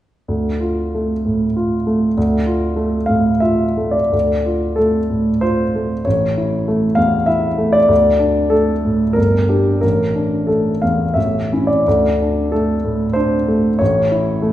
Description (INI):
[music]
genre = classical, romantic character piece for solo piano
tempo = 84-100 BPM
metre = 3/4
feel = rubato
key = D minor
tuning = A4 = 440 Hz
[part]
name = warm grand piano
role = solo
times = 0.3-14.5 s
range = G1 to F5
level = -14 LUFS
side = equal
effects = none
[sound]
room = wet recital hall reverb, RT60 1.5 s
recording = heard from further back in the room, nothing above 10.4 kHz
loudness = -14 LUFS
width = side -13 dB against mid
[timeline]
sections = 0.3-4.1 A section; 4.1-14.5 B section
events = none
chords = 0.3 Dm; 6.1 A; 7.9 D5; 9.2 Gm; 9.8 Asus4; 11.2 A; 11.9 D5; 13.8 A